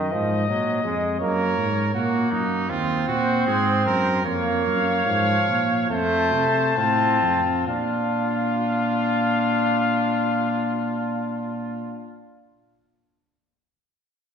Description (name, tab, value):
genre	classical, imitative canzona for brass ensemble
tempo	65-84 BPM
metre	4/4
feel	straight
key	unclear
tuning	A4 = 441 Hz
part	warm cornet	melody	0.0-12.1 s	C5 to A5	-25 LUFS	left 6 dB	none
part	brilliant trombone	accompaniment	0.0-12.1 s	D#3 to D4	-26 LUFS	right 2 dB	none
part	dark tuba	bass	0.0-12.1 s	Eb2 to C3	-25 LUFS	right 1 dB	none
part	clear trumpet	second line	1.2-12.1 s	Eb4 to Db5	-27 LUFS	right 4 dB	none
room	wet scoring stage reverb, RT60 1.6 s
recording	recorded in a church or concert hall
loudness	-20 LUFS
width	side -7 dB against mid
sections	0.0-7.7 A section; 7.7-11.4 B section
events	slowing down 0.0-7.7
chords	0.0 D#m/F#; 1.2 Gb; 2.7 Cdim/Eb; 4.3 Bbm/F; 5.9 F; 7.7 Bb